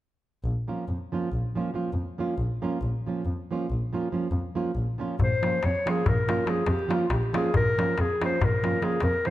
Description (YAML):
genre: balkan folk, Balkan wedding band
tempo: 279 BPM (eighths)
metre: 11/8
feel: straight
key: Bb minor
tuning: A4 = 442 Hz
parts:
  - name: muted double bass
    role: bass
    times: 0.4-9.1 s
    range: Bb1 to F2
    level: -28 LUFS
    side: equal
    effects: none
  - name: nylon-string guitar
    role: accompaniment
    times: 0.7-9.3 s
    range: F3 to F4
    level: -29 LUFS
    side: right 3 dB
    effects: none
  - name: dark clarinet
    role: melody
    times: 5.2-9.3 s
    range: F4 to Db5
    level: -27 LUFS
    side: left 2 dB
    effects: slapback echo
  - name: darbuka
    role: percussion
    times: 5.2-9.3 s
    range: none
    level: -29 LUFS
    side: left 3 dB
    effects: none
room: moderate recital hall reverb, RT60 1.6 s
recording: dark, warm production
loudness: -24 LUFS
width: side -14 dB against mid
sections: 0.5-5.2 A section; 5.2-9.3 B section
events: none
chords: 0.5 Bbm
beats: | 0.45 0.67 0.88 1.10 1.31 1.53 1.75 1.96 2.18 2.39 2.61 | 2.83 3.04 3.26 3.47 3.69 3.90 4.12 4.33 4.55 4.76 4.98 | 5.19 5.41 5.62 5.84 6.05 6.26 6.48 6.69 6.91 7.12 7.34 | 7.55 7.77 7.98 8.20 8.41 8.62 8.84 9.05 9.27